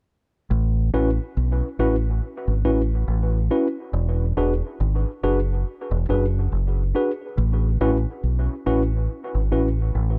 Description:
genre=lovers rock reggae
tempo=70 BPM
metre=4/4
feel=swing 60% on 16ths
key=A major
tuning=A4 = 440 Hz
part: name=deep dub fingered electric bass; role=bass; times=0.5-10.2 s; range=E1 to B1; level=-23 LUFS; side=equal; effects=none
part: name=mellow tine electric piano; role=accompaniment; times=0.9-9.7 s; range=C#4 to B4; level=-27 LUFS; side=equal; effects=dub echo
room=light reverb, digital ambience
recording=none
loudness=-23 LUFS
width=mono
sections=0.5-10.2 A section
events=none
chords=0.5 A6; 3.9 E7; 7.4 A6

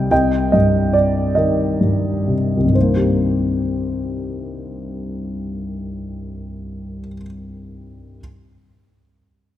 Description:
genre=classical, lyrical solo piano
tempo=39-49 BPM (dotted quarters)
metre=6/8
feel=rubato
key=C minor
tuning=A4 = 440 Hz
part: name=dark grand piano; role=solo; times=0.0-8.2 s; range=C2 to G5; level=-17 LUFS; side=equal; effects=none
room=moderate concert hall reverb, RT60 2.3 s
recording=none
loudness=-16 LUFS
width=side -12 dB against mid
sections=0.1-2.8 A section; 2.8-5.7 B section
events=slowing down 0.0-2.8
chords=0.1 Cm; 2.8 Cm7

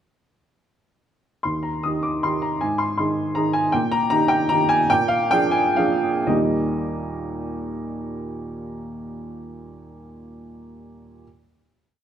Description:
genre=classical, piano waltz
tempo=114-166 BPM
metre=3/4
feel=rubato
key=Eb major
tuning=A4 = 440 Hz
part: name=clear upright piano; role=solo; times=1.4-11.2 s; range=Eb2 to Eb6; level=-21 LUFS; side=equal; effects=none
room=moderate recital hall reverb, RT60 1.3 s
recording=dark, warm production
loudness=-19 LUFS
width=side -9 dB against mid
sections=1.5-6.3 A section; 6.3-9.1 final chord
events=slowing down 3.2-6.3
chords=1.5 Eb; 2.6 Ab; 3.7 Eb/Bb; 4.9 Bb7; 6.3 Eb

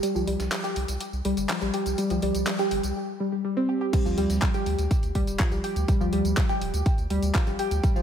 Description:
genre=progressive house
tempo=123 BPM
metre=4/4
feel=straight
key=unclear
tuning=A4 = 440 Hz
part: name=soft round pluck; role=arpeggios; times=0.0-8.0 s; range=F3 to G5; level=-26 LUFS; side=equal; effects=wide subtle chorus, sidechain pumping, digital delay
part: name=deep house drum kit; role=drums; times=0.0-8.0 s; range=crash cymbal, handclaps, hi-hat, tambourine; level=-34 LUFS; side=equal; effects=sidechain pumping on hats, sidechain pumping on perc, sidechain pumping on cymbals
part: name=dusty soul sampler-style drum kit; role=drums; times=0.0-8.0 s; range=hi-hat, snare drum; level=-42 LUFS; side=right 1 dB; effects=none
part: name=round analog bass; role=bass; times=0.2-8.0 s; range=D1 to D2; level=-29 LUFS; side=equal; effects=sidechain pumping
part: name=electronic kick drum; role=drums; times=3.9-7.9 s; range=none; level=-24 LUFS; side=equal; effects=none
room=light reverb, digital ambience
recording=none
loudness=-23 LUFS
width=side -9 dB against mid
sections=0.0-3.9 A section; 3.9-8.0 B section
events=build-up 0.0-3.9; filter sweep on synth pluck 0.0-3.9; break 3.0-3.9; drop 3.9-8.0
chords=0.0 C5; 3.9 Dm

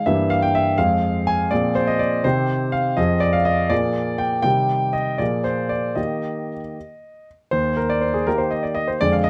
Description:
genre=classical-period piano sonatina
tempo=81 BPM (dotted quarters)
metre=6/8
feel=straight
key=Eb major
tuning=A4 = 440 Hz
part: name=warm concert grand piano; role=solo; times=0.0-9.3 s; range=Eb2 to Ab5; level=-21 LUFS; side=equal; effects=none
room=little or no reverb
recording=close, detailed microphones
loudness=-21 LUFS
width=mono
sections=0.0-7.5 A section; 7.5-9.3 B section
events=none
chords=0.1 Edim/G; 0.8 Fm; 1.5 Bbsus2; 2.2 Cm; 3.0 Fm; 3.7 Bb7; 4.4 Cm; 5.2 Bb5; 6.0 Eb

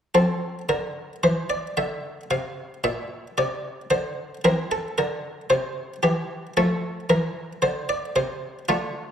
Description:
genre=classical, baroque-style suite movement for harpsichord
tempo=56 BPM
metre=4/4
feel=rubato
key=F major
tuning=A4 = 441 Hz
part: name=buff-stop harpsichord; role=solo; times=0.1-9.1 s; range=Bb2 to F5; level=-22 LUFS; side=equal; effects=none
room=wet recital hall reverb, RT60 1.7 s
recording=none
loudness=-23 LUFS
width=side -8 dB against mid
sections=0.2-9.1 A section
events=none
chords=0.2 F5; 4.4 C; 6.6 F

